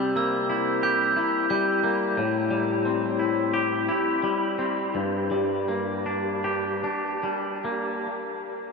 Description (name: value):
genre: rock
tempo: 71-89 BPM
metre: 4/4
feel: straight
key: G dorian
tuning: A4 = 440 Hz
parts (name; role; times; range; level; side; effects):
- glockenspiel with soft plastic mallets; arpeggios; 0.0-2.2 s; E6 to G6; -29 LUFS; right 5 dB; analog delay
- twangy electric guitar; arpeggios; 0.0-8.1 s; G2 to G4; -24 LUFS; left 2 dB; analog delay
room: wet huge ambient reverb, RT60 6.5 s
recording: dreamy mix soaked in reverb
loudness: -23 LUFS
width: side -4 dB against mid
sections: 0.0-8.1 A section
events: slowing down 2.2-8.1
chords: 0.0 C7; 2.2 Am7; 4.9 Gm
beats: 0.16 0.83 1.50 | 2.18 2.85 3.54 4.24 | 4.95 5.68 6.45 7.24